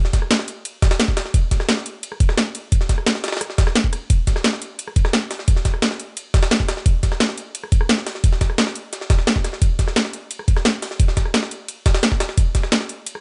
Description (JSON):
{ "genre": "drum and bass", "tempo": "174 BPM", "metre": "4/4", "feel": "straight", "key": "none", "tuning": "none", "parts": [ { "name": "jungle sampler-style drum kit", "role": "drums", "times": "0.0-13.1 s", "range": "hi-hat, ride cymbal, snare drum", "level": "-30 LUFS", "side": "equal", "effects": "high-pass filter on snare, high-pass filter on cymbals, high-pass filter on hats, high-pass filter on room" }, { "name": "drum and bass drum kit", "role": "drums", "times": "0.1-13.2 s", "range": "hi-hat, rim click, snare drum", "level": "-23 LUFS", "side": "equal", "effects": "none" }, { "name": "electronic kick drum", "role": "drums", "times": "0.1-12.6 s", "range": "none", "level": "-19 LUFS", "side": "equal", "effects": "none" } ], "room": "little or no reverb", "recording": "nothing above 10.7 kHz", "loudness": "-20 LUFS", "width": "mono", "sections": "0.0-13.2 A section", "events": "none", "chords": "none" }